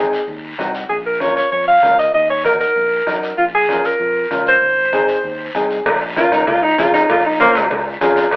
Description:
latin, cumbia; 194 BPM; 4/4; straight; Bb minor; A4 = 441 Hz
warm upright piano; accompaniment; 0.0-8.2 s; C4 to Ab5; -19 LUFS; left 1 dB
fingered electric bass; bass; 0.0-8.4 s; Ab1 to Gb2; -31 LUFS; equal
guiro; percussion; 0.1-8.4 s; -31 LUFS; left 1 dB
bombo; percussion; 0.3-8.4 s; -22 LUFS; equal
congas; percussion; 0.3-8.2 s; -37 LUFS; equal
warm alto saxophone; melody; 0.9-7.7 s; Bb3 to F5; -14 LUFS; equal
cowbell; percussion; 5.9-8.4 s; -21 LUFS; equal
moderate studio reverb, RT60 0.7 s; band playing live in one room, telephone sound; -13 LUFS; side -26 dB against mid
0.0-5.9 A section; 5.9-8.4 B section
upright piano fill 5.4-5.9; alto saxophone solo 5.9-8.4
0.0 Ab; 0.9 Bbm; 2.1 Ebm; 3.4 Bbm; 4.6 Ab; 5.9 Bbm
0.28 0.59 | 0.90 1.21 1.52 1.83 | 2.14 2.45 2.76 3.07 | 3.38 3.69 4.00 4.31 | 4.62 4.93 5.24 5.55 | 5.86 6.17 6.47 6.78 | 7.09 7.40 7.71 8.02 | 8.32

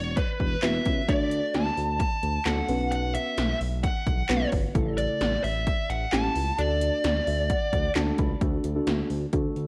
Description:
synth-pop; 131 BPM; 4/4; straight; D major; A4 = 440 Hz
smooth overdriven lead guitar; melody; 0.0-7.9 s; B4 to A5; -31 LUFS; equal; tape echo
smooth synth bass; bass; 0.0-9.7 s; E1 to D2; -32 LUFS; equal
80s electronic pad drums; drums; 0.2-9.7 s; handclaps, hi-hat, kick drum, snare drum; -31 LUFS; equal; overdrive
muted felt-like synth keys; accompaniment; 0.6-9.7 s; C#3 to B5; -33 LUFS; equal; chorus
moderate recital hall reverb, RT60 1.6 s; worn, warbling old tape, cassette tape, warbly pitch drift; -26 LUFS; mono
0.0-8.4 A section; 8.4-9.7 B section
synth keys fill 7.0-8.4
0.0 Esus2; 1.1 D; 2.7 Bsus2; 4.8 A; 6.6 D
0.17 0.63 | 1.09 1.54 2.00 2.46 | 2.92 3.38 3.83 4.29 | 4.75 5.21 5.67 6.12 | 6.58 7.04 7.50 7.96 | 8.41 8.87 9.33

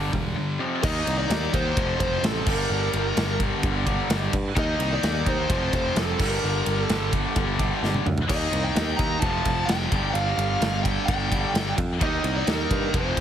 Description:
hard rock; 129 BPM; 4/4; straight; G minor; A4 = 440 Hz
cranked stack guitar; riff; 0.0-13.2 s; F2 to Eb4; -31 LUFS; right 9 dB; overdrive
distorted electric guitar; riff; 0.0-13.2 s; F2 to Eb4; -30 LUFS; left 11 dB; overdrive
heavy high-gain guitar; riff; 0.0-13.2 s; F2 to Eb4; -32 LUFS; equal; distortion
picked electric bass; bass; 0.0-13.2 s; E1 to G2; -28 LUFS; equal
big rock drum kit; drums; 0.1-13.2 s; crash cymbal, kick drum, ride cymbal, snare drum, splash cymbal, toms; -27 LUFS; equal
bluesy overdriven lead guitar; melody; 0.8-13.2 s; A4 to Bb5; -29 LUFS; equal; distortion, analog delay
little or no reverb; heavily compressed radio sound, multiband compression; -22 LUFS; side -9 dB against mid
0.8-13.2 A section
drum fill 7.8-8.3
0.0 G5; 0.6 F5; 0.8 Eb5; 1.8 F; 2.5 Gm; 4.6 Eb5; 5.5 F5; 6.2 Gm; 8.3 Eb5; 9.2 F; 9.9 G5; 12.0 Eb
0.37 | 0.84 1.31 1.77 2.24 | 2.71 3.17 3.64 4.11 | 4.57 5.04 5.50 5.97 | 6.43 6.90 7.36 7.83 | 8.29 8.76 9.22 9.69 | 10.15 10.62 11.08 11.55 | 12.01 12.48 12.94

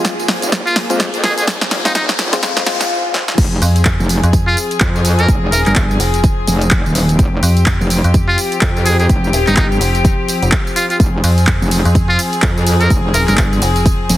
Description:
bass house; 126 BPM; 4/4; swing 59% on 16ths; F minor; A4 = 441 Hz
rich chamber string section; sustained chords; 0.0-14.2 s; F3 to Ab4; -21 LUFS; left 2 dB; sidechain pumping, low-pass filter
percussive organ stab; stabs; 0.0-2.9 s; Ab3 to F4; -23 LUFS; left 2 dB; chorus, phaser, cassette tape, sidechain pumping, ping-pong delay
electronic kick drum; drums; 0.0-14.0 s; -15 LUFS; equal; high-pass filter on kick
house drum kit; drums; 0.0-14.2 s; crash cymbal, handclaps, hi-hat, ride cymbal, snare drum, tambourine; -18 LUFS; equal
riser and swell; sound effects; 0.0-3.4 s; -24 LUFS; left 4 dB
granular cloud pad; texture; 0.0-2.9 s; F4 to Ab5; -29 LUFS; right 1 dB
metallic wobble bass; bass; 0.4-14.2 s; Eb1 to F2; -16 LUFS; equal; distortion, chorus, sidechain pumping, high-pass filter
trumpet with metal mute; melody; 0.7-13.3 s; Eb4 to Bb4; -20 LUFS; equal; ping-pong delay
metallic FM bass; bass; 3.6-14.1 s; Eb1 to F2; -15 LUFS; equal; sidechain pumping
light reverb; heavily compressed radio sound, multiband compression, high-pass filter; -11 LUFS; side -14 dB against mid
0.0-3.4 A section; 3.4-14.2 B section
build-up 0.0-3.4; drum fill 0.0-2.9, 3.1; riser 0.0-2.9; filter sweep on synth stab 0.0-3.4; swell 2.4-3.4; drop 3.4-14.2
0.0 Fm
0.05 0.52 1.00 | 1.48 1.95 2.43 2.90 | 3.38 3.86 4.33 4.81 | 5.29 5.76 6.24 6.71 | 7.19 7.67 8.14 8.62 | 9.09 9.57 10.05 10.52 | 11.00 11.47 11.95 12.43 | 12.90 13.38 13.86

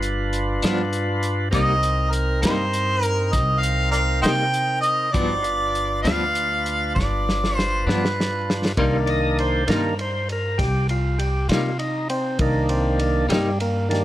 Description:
slow blues; 66 BPM (dotted quarters); 12/8; straight; C minor; A4 = 440 Hz
tonewheel organ; sustained chords; 0.0-14.0 s; Eb3 to Eb5; -25 LUFS; equal; overdrive, slow rotary speaker
upright bass; bass; 0.0-14.0 s; G1 to C3; -24 LUFS; equal
warm soul drum kit; drums; 0.0-14.0 s; hi-hat, kick drum, ride cymbal, snare drum; -26 LUFS; equal
clean electric guitar; accompaniment; 0.6-13.5 s; G2 to Eb4; -26 LUFS; left 2 dB; tremolo
mellow harmonica; melody; 1.5-8.5 s; Bb4 to G5; -22 LUFS; right 1 dB
light reverb, small room ambience; -19 LUFS; side -14 dB against mid
0.0-8.8 A section; 8.8-14.0 B section
drum fill 7.0-8.8; tonewheel organ solo 8.8-14.0
0.0 G7; 1.5 Cm7; 5.1 G7; 8.8 Cm7
0.63 | 1.53 2.44 3.34 4.24 | 5.15 6.05 6.96 7.86 | 8.77 9.68 10.58 11.48 | 12.39 13.29

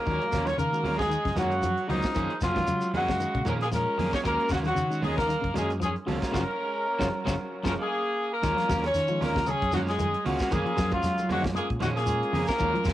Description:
afrobeat; 115 BPM; 4/4; swing 54% on 16ths; Eb minor; A4 = 441 Hz
clear horn section; melody; 0.0-12.9 s; Eb4 to Db5; -28 LUFS; left 1 dB; cassette tape
raspy alto saxophone; second line; 0.0-12.9 s; F3 to Eb4; -37 LUFS; right 2 dB; cassette tape
electric guitar at the edge of break-up; stabs; 0.0-12.9 s; F3 to Ab4; -35 LUFS; right 5 dB; cassette tape, analog delay
bright tine electric piano; accompaniment; 0.1-12.9 s; Ab3 to F5; -36 LUFS; left 1 dB; medium stereo tremolo, cassette tape
electric guitar at the edge of break-up; arpeggios; 0.1-12.9 s; Db3 to Gb3; -34 LUFS; left 5 dB; cassette tape
fingered electric bass; bass; 0.1-12.9 s; Gb1 to Gb3; -32 LUFS; equal
tight funk drum kit; drums; 0.1-12.9 s; hi-hat, kick drum, snare drum; -34 LUFS; equal; cassette tape
shekere; percussion; 0.1-12.9 s; -37 LUFS; equal
congas; percussion; 0.2-12.9 s; -37 LUFS; right 4 dB
brilliant trombone section; second line; 6.5-8.4 s; Gb3 to Bb3; -40 LUFS; left 2 dB; cassette tape
light reverb, small room ambience; home recording on cassette; -24 LUFS; side -13 dB against mid
0.0-8.4 A section; 8.4-12.9 A section
band accent 6.3-8.4
0.1 Ebm9; 2.2 Gbmaj9; 4.2 Ebm9; 6.3 Gbmaj9; 8.4 Ebm9; 10.5 Gbmaj9
| 0.06 0.58 1.10 1.63 | 2.15 2.67 3.20 3.72 | 4.24 4.77 5.29 5.81 | 6.34 6.86 7.38 7.90 | 8.43 8.95 9.47 9.99 | 10.51 11.04 11.56 12.08 | 12.60

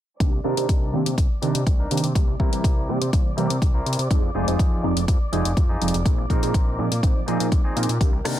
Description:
filtered disco house; 123 BPM; 4/4; straight; C minor; A4 = 441 Hz
funky polysynth comp; accompaniment; 0.2-8.4 s; Eb3 to C5; -26 LUFS; right 2 dB; chorus, phaser, sidechain pumping, low-pass filter
rich symphonic string section; sustained chords; 0.2-8.4 s; Bb4 to D6; -36 LUFS; equal; sidechain pumping, low-pass filter
fat analog bass; bass; 0.2-8.4 s; F1 to C3; -26 LUFS; equal; sidechain pumping, low-pass filter
electronic kick drum; drums; 0.2-8.1 s; -20 LUFS; equal; overdrive, studio reverb
house drum kit; drums; 0.2-8.4 s; hi-hat, rim click, shaker; -30 LUFS; left 4 dB; overdrive, studio reverb
clean electric guitar; riff; 0.3-8.4 s; C4 to Bb4; -31 LUFS; left 1 dB; sidechain pumping, low-pass filter
little or no reverb; dense, heavily limited modern master; -19 LUFS; side -12 dB against mid
0.2-8.4 A section
filter sweep 0.2-8.4
0.2 Cm9; 2.2 C7; 4.1 Fm7; 6.1 Bb9sus4
| 0.20 0.69 1.18 1.67 | 2.16 2.64 3.13 3.62 | 4.11 4.59 5.08 5.57 | 6.06 6.55 7.03 7.52 | 8.01

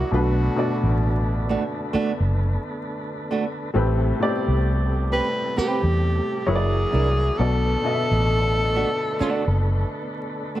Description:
R&B, neo-soul; 66 BPM; 4/4; swing 59% on 16ths; A4 = 440 Hz
breathy tenor saxophone; melody; 0.0-10.1 s; F#4 to B4; -26 LUFS; equal; tape echo
warm upright piano; accompaniment; 0.0-10.6 s; A2 to E5; -26 LUFS; left 2 dB
tonewheel organ; sustained chords; 0.0-10.6 s; C3 to B3; -32 LUFS; right 1 dB; slow rotary speaker
vintage muted fingered electric bass; bass; 0.0-9.8 s; F#1 to E2; -21 LUFS; equal
nylon-string guitar; second line; 1.5-10.6 s; A3 to B4; -25 LUFS; right 4 dB
light reverb, small room ambience; vinyl crackle; -20 LUFS; side -14 dB against mid
0.0-10.6 A section
break 10.1-10.6
0.1 Bm7; 3.7 Am9; 6.5 F#7b13; 7.4 Bm7
| 0.11 1.01 1.92 2.83 | 3.74 4.65 5.56 6.47 | 7.38 8.29 9.20 10.11

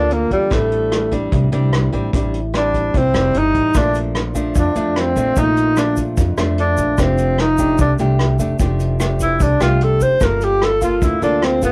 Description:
bossa nova; 148 BPM; 4/4; straight; F major; A4 = 440 Hz
breathy tenor saxophone; melody; 0.0-11.7 s; G3 to C5; -19 LUFS; equal; cassette tape
nylon-string guitar; accompaniment; 0.0-11.7 s; F2 to A4; -24 LUFS; equal; cassette tape
upright bass; bass; 0.0-11.7 s; F1 to F2; -22 LUFS; equal; tube saturation
vintage brush drum kit; drums; 0.1-11.7 s; hi-hat, kick drum, rim click; -24 LUFS; equal; cassette tape
egg shaker; percussion; 3.7-11.7 s; -38 LUFS; equal
light reverb; home recording on cassette; -17 LUFS; mono
0.0-11.7 A section
tenor saxophone solo 0.0-11.7
0.0 Gm9; 0.5 F69/A (rootless); 3.8 Bbmaj7; 7.0 F69; 10.2 Gm9
0.11 | 0.51 0.92 1.32 1.73 | 2.13 2.54 2.94 3.35 | 3.75 4.15 4.56 4.96 | 5.37 5.77 6.18 6.58 | 6.98 7.39 7.79 8.20 | 8.60 9.00 9.41 9.81 | 10.21 10.62 11.02 11.42

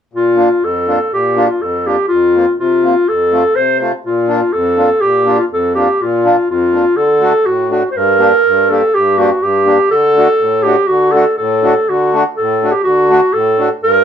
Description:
alpine folk, alpine dance band; 123 BPM; 2/4; straight; Bb major; A4 = 441 Hz
accordion; accompaniment; 0.1-14.0 s; F2 to G4; -16 LUFS; left 1 dB
warm clarinet; melody; 0.2-14.0 s; F4 to C5; -11 LUFS; equal
wet small room reverb, RT60 0.5 s; -10 LUFS; side -8 dB against mid
0.1-8.0 A section; 8.0-14.0 B section
0.1 Bb; 2.1 Fsus4; 3.1 F; 4.1 Bb; 7.0 D; 8.0 Gm; 9.9 D
| 0.14 0.63 | 1.12 1.61 | 2.09 2.58 | 3.07 3.56 | 4.06 4.55 | 5.04 5.53 | 6.01 6.50 | 6.98 7.47 | 7.97 8.46 | 8.95 9.44 | 9.92 10.40 | 10.89 11.38 | 11.87 12.36 | 12.85 13.33 | 13.81

